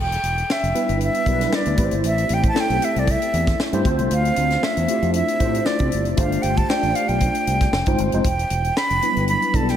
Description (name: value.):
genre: polished 1980s jazz-funk pop.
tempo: 116 BPM.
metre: 4/4.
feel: swing 54% on 16ths.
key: A minor.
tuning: A4 = 440 Hz.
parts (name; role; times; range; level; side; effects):
breathy concert flute; melody; 0.0-9.8 s; D5 to B5; -22 LUFS; right 2 dB; tape echo.
overdriven fingered electric bass; bass; 0.0-9.7 s; E1 to C3; -23 LUFS; equal; none.
tight funk drum kit; drums; 0.1-9.8 s; hi-hat, kick drum, snare drum; -24 LUFS; equal; none.
mellow tine electric piano; accompaniment; 0.7-9.8 s; F#3 to D5; -23 LUFS; left 1 dB; medium stereo tremolo, ensemble chorus.
room: moderate plate reverb, RT60 2.6 s.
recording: dreamy mix soaked in reverb.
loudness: -18 LUFS.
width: side -10 dB against mid.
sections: 0.0-9.8 A section.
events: none.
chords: 0.0 Em7; 1.8 Am7; 3.9 Dm9; 6.2 G9sus4; 7.7 Fm7; 8.2 Em7.